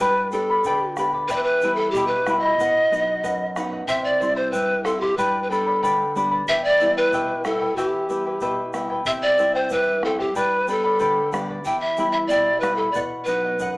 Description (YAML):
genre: andean folk, Andean ensemble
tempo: 93 BPM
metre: 2/4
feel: straight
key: E minor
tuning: A4 = 439 Hz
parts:
  - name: breathy pan flute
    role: melody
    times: 0.0-13.8 s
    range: G4 to G5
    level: -21 LUFS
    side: equal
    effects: none
  - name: charango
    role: accompaniment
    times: 0.0-13.8 s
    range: E4 to C6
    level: -24 LUFS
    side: left 1 dB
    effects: none
  - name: nylon-string guitar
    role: accompaniment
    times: 0.0-13.8 s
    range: E2 to D#5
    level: -30 LUFS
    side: equal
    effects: none
  - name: bombo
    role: percussion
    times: 0.0-13.7 s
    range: none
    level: -35 LUFS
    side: right 1 dB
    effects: none
  - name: egg shaker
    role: percussion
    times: 0.3-13.7 s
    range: none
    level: -46 LUFS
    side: right 2 dB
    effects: none
room: moderate large studio reverb, RT60 0.9 s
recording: band playing live in one room, small speaker sound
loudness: -19 LUFS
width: side -24 dB against mid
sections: 0.0-9.1 A section; 9.1-13.8 A section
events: nylon-string guitar fill 2.9-3.9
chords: 0.0 G; 1.3 Em; 2.6 B; 3.9 C; 5.2 G; 6.5 Em; 9.1 C; 10.4 G; 11.6 Em; 12.9 B